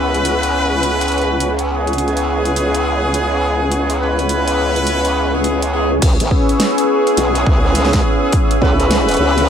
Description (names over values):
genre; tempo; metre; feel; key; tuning
glitch hop; 104 BPM; 4/4; swing 63% on 16ths; C# minor pentatonic; A4 = 444 Hz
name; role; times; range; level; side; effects
warm analog pad; sustained chords; 0.0-9.5 s; B4 to G#6; -23 LUFS; equal; chorus, sidechain pumping
bright horn section; stabs; 0.0-9.5 s; B3 to B4; -19 LUFS; equal; sidechain pumping, dub echo
growl bass; bass; 0.0-9.5 s; G#1 to C#2; -19 LUFS; equal; chorus, tube saturation
warbly tape-like pad; texture; 0.0-9.5 s; C#4 to F#5; -20 LUFS; left 1 dB; chorus, built-in reverb, sidechain pumping
dubstep drum kit; drums; 0.1-9.5 s; crash cymbal, hi-hat, snare drum; -22 LUFS; right 1 dB; none
electronic kick drum; drums; 6.0-8.8 s; none; -15 LUFS; equal; none
room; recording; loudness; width
moderate lush hall reverb, RT60 1.7 s, digital ambience; none; -13 LUFS; side -8 dB against mid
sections
0.0-6.0 A section; 6.0-9.5 B section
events
drop 6.0-9.5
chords
0.0 C#m7